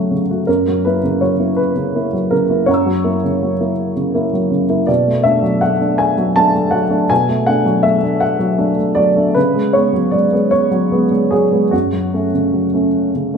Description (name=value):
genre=neoclassical minimalist piano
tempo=49-55 BPM (dotted quarters)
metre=6/8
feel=rubato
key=unclear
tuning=A4 = 439 Hz
part: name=warm upright piano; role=solo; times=0.0-13.4 s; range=F#2 to E6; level=-13 LUFS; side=equal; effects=none
room=wet large studio reverb, RT60 1.3 s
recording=band playing live in one room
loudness=-13 LUFS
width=side -6 dB against mid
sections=0.0-13.4 A section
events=none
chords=0.5 F#7; 4.9 Bm7; 9.4 C#7sus4; 11.7 F#m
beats=| 0.47 1.58 | 2.69 3.79 | 4.89 5.99 | 7.10 8.22 | 9.35 10.52 | 11.72 12.94